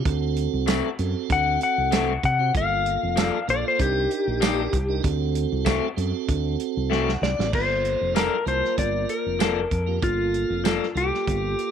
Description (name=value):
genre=straight-eighth soul blues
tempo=96 BPM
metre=4/4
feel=swing 55% on 16ths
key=G minor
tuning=A4 = 441 Hz
part: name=tonewheel organ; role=accompaniment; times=0.0-11.7 s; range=Bb3 to F#5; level=-29 LUFS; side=right 15 dB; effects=overdrive, slow rotary speaker
part: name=fingered electric bass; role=bass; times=0.1-11.5 s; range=F1 to C3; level=-27 LUFS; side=equal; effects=none
part: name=warm soul drum kit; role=drums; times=0.1-11.7 s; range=crash cymbal, hi-hat, kick drum, snare drum, tambourine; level=-26 LUFS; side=right 4 dB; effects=none
part: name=electric guitar through a small old amp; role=stabs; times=0.7-10.9 s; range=Eb3 to A4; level=-28 LUFS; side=left 12 dB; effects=none
part: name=clean lap steel guitar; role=melody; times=1.3-11.7 s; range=F4 to F#5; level=-24 LUFS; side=left 4 dB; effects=none
room=light reverb, small room ambience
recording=1960s-style stereo with parts hard left and right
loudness=-21 LUFS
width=side -8 dB against mid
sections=0.0-7.5 A section; 7.5-11.7 B section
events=electric slide guitar solo 0.0-7.5; tonewheel organ fill 6.6-7.5; drum fill 6.9-7.5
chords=0.1 D7; 2.5 Gm9; 3.8 Cm9; 5.0 D7; 7.5 Gm9